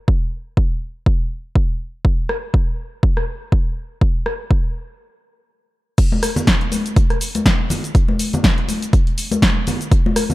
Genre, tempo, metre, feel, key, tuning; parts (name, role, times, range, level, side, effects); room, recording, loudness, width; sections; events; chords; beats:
house; 122 BPM; 4/4; swing 56% on 16ths
electronic kick drum; drums; 0.1-10.0 s; -16 LUFS; equal; overdrive
punchy analog drum machine; drums; 2.3-10.3 s; cabasa, crash cymbal, hi-hat, rim click, snare drum; -21 LUFS; equal
congas; percussion; 6.1-10.3 s; -22 LUFS; left 2 dB
little or no reverb; dark, warm production; -16 LUFS; side -18 dB against mid
0.0-6.0 A section; 6.0-10.3 B section
stop 5.0-6.0; drop 6.0-10.3
| 0.08 0.57 1.06 1.55 | 2.05 2.54 3.03 3.52 | 4.01 4.51 5.00 5.49 | 5.98 6.47 6.96 7.46 | 7.95 8.44 8.93 9.42 | 9.92